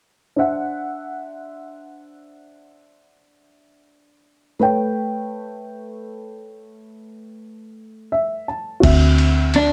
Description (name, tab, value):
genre	slow blues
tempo	57 BPM (dotted quarters)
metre	12/8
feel	straight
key	D mixolydian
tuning	A4 = 439 Hz
part	dark upright piano	accompaniment	0.4-9.7 s	A3 to A5	-25 LUFS	equal	none
part	vintage muted fingered electric bass	bass	8.8-9.7 s	D2	-17 LUFS	equal	none
part	lo-fi sampler-style drum kit	drums	8.8-9.7 s	crash cymbal, kick drum, ride cymbal, snare drum	-23 LUFS	equal	overdrive
part	electric guitar through a small old amp	melody	9.6-9.7 s	D4	-16 LUFS	equal	none
room	light reverb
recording	none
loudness	-20 LUFS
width	mono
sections	0.4-8.8 A section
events	upright piano fill 7.8-8.8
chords	0.4 D7; 4.6 A7; 8.8 D9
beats	| 0.39 1.45 2.50 3.56 | 4.62 5.67 6.72 7.78 | 8.83